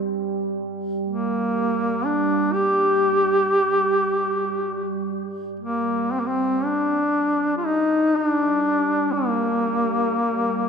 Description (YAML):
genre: caucasian folk, Caucasian lament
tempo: 61 BPM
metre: 3/4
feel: rubato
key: G minor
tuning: A4 = 439 Hz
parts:
  - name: deep dark ambient pad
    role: drone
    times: 0.0-10.7 s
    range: G3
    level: -28 LUFS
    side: right 5 dB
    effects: chorus, built-in reverb
  - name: warm duduk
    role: melody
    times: 1.1-10.7 s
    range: Bb3 to G4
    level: -20 LUFS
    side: left 1 dB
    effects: analog delay
room: wet plate reverb, RT60 3.6 s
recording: dreamy mix soaked in reverb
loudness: -20 LUFS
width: side -6 dB against mid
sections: 0.0-6.1 A section; 6.1-10.7 B section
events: none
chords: none